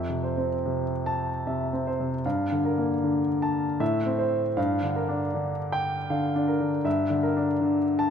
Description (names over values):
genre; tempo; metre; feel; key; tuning
classical, impressionist solo piano; 71-82 BPM; 3/4; rubato; unclear; A4 = 438 Hz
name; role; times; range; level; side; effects
clear grand piano; solo; 0.0-8.1 s; F2 to A5; -24 LUFS; equal; none
room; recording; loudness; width
moderate scoring stage reverb, RT60 2.1 s; none; -24 LUFS; side -7 dB against mid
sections
0.0-8.1 A section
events
none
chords
0.0 Fmaj7; 2.2 Gm9; 3.8 Am; 4.6 Gm7; 6.9 Bb(#11)/G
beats
0.65 1.46 | 2.25 3.03 3.81 | 4.57 5.35 6.10 | 6.85 7.62